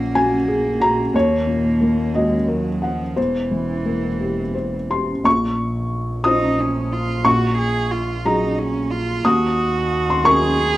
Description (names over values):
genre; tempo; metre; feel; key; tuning
neoclassical piano and strings; 60 BPM (dotted quarters); 6/8; rubato; Bb minor; A4 = 439 Hz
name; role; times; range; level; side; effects
warm cello; second line; 0.0-10.8 s; E3 to Ab4; -24 LUFS; right 4 dB; none
felt-muted upright piano; accompaniment; 0.0-10.8 s; Bb1 to Eb6; -18 LUFS; left 1 dB; none
dark double bass; bass; 0.0-10.8 s; E1 to Eb2; -26 LUFS; equal; none
room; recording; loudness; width
moderate studio reverb, RT60 0.6 s; rough home demo mix; -17 LUFS; side -15 dB against mid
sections
0.0-5.2 A section; 5.2-10.8 B section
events
none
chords
0.0 Gbadd9/Bb; 1.1 Ebm; 3.2 C7/E; 5.2 Bbmadd9; 7.3 Gbadd9/Bb; 9.2 Ebm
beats
0.16 | 1.14 2.14 | 3.17 4.21 | 5.25 6.25 | 7.25 8.25 | 9.24 10.24